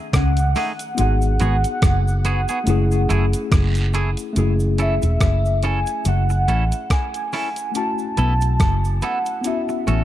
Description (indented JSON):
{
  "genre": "lovers rock reggae",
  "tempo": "71 BPM",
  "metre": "4/4",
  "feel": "swing 57% on 16ths",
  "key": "F# dorian",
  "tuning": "A4 = 440 Hz",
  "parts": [
    { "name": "mellow tine electric piano", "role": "accompaniment", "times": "0.0-10.0 s", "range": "D#3 to G#4", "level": "-27 LUFS", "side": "left 4 dB", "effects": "medium stereo tremolo" },
    { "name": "mellow electric guitar", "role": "riff", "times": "0.1-10.0 s", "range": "E3 to C#4", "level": "-32 LUFS", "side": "left 6 dB", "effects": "phaser" },
    { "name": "vintage muted fingered electric bass", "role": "bass", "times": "0.1-10.0 s", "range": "E1 to C#2", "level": "-18 LUFS", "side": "equal", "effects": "none" },
    { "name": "crisp 8-bit digital drum machine", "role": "drums", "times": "0.1-10.0 s", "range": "hi-hat, kick drum, rim click", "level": "-21 LUFS", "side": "equal", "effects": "tape echo" },
    { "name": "cabasa and guiro", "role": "percussion", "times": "0.1-10.0 s", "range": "none", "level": "-37 LUFS", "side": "right 4 dB", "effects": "none" },
    { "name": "warm velvety synth lead", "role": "melody", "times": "0.2-10.0 s", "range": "E5 to A5", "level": "-25 LUFS", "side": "equal", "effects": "chorus, tape echo" },
    { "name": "twangy electric guitar", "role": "stabs", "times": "0.6-10.0 s", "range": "A3 to A4", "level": "-29 LUFS", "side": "right 4 dB", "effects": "tape echo" }
  ],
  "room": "little or no reverb",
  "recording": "dark, warm production",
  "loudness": "-17 LUFS",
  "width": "side -13 dB against mid",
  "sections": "0.0-4.4 A section; 4.4-10.0 B section",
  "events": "none",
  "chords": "0.0 B13 (rootless); 1.0 G#m7; 2.7 F#m9; 4.4 F#m7; 7.8 B7sus4; 9.4 A6"
}